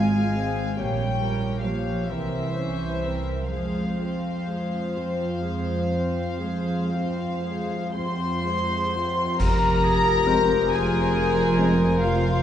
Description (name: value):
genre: classical, slow romantic movement for symphony orchestra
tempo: 38-48 BPM (dotted quarters)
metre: 12/8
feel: rubato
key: F minor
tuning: A4 = 440 Hz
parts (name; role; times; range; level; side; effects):
- rich studio violin section; melody; 0.0-12.4 s; E5 to C6; -30 LUFS; left 3 dB; none
- warm symphonic violin section; second line; 0.0-12.4 s; F4 to F5; -30 LUFS; left 5 dB; none
- rich chamber viola section; accompaniment; 0.0-12.4 s; Ab3 to C5; -30 LUFS; left 2 dB; none
- dark studio cello section; bass; 0.0-12.4 s; F2 to Ab3; -28 LUFS; right 2 dB; none
- warm symphonic double bass section; bass; 0.0-12.4 s; F1 to F2; -28 LUFS; right 2 dB; none
- cymbal swell, clash cymbals and concert bass drum; percussion; 3.5-11.1 s; none; -30 LUFS; equal; none
- mellow concert flute; second line; 8.0-12.4 s; F5 to C6; -30 LUFS; right 1 dB; none
- dark clarinet; second line; 9.4-12.4 s; F4 to G4; -30 LUFS; left 2 dB; none
- warm oboe; second line; 9.4-12.4 s; Ab4 to C5; -32 LUFS; right 1 dB; none
- dark French horn section; sustained chords; 10.3-11.7 s; Ab3 to C4; -30 LUFS; left 4 dB; none
room: wet concert hall reverb, RT60 2.1 s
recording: dark, warm production, nothing above 10.3 kHz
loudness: -22 LUFS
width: side -10 dB against mid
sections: 0.0-9.4 A section; 9.4-12.4 B section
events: band accent 9.4-10.3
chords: 0.0 Fm/Ab; 0.8 Gdim/Bb; 2.1 C7b9; 3.5 Fm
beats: 0.76 2.08 | 3.50 4.94 6.38 7.94 | 9.40 10.72 12.02